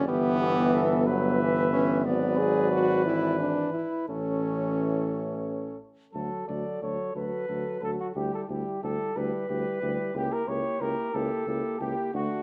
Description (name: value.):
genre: classical, brass quintet.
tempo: 60 BPM (dotted quarters).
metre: 6/8.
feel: straight.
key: D major.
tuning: A4 = 440 Hz.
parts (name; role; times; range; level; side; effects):
dark cornet; melody; 0.0-12.4 s; F#4 to E5; -35 LUFS; equal; none.
clear French horn; accompaniment; 0.0-12.4 s; B3 to G#4; -33 LUFS; equal; none.
warm trombone; accompaniment; 0.0-12.4 s; E3 to A#3; -37 LUFS; equal; none.
clear tuba; bass; 0.0-12.3 s; G1 to D2; -33 LUFS; equal; none.
warm flugelhorn; second line; 0.1-12.4 s; F#4 to B4; -37 LUFS; equal; none.
room: moderate recital hall reverb, RT60 1.5 s.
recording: close, detailed microphones.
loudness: -28 LUFS.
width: mono.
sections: 0.0-6.1 A section; 6.1-12.4 B section.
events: none.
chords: 0.1 Em/G; 2.1 E7/G#; 4.1 A; 6.1 D; 8.2 Em7/D; 10.1 C#dim7.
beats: | 0.09 1.07 | 2.06 3.07 | 4.09 5.12 | 6.15 7.16 | 8.16 9.16 | 10.15 11.14 | 12.14.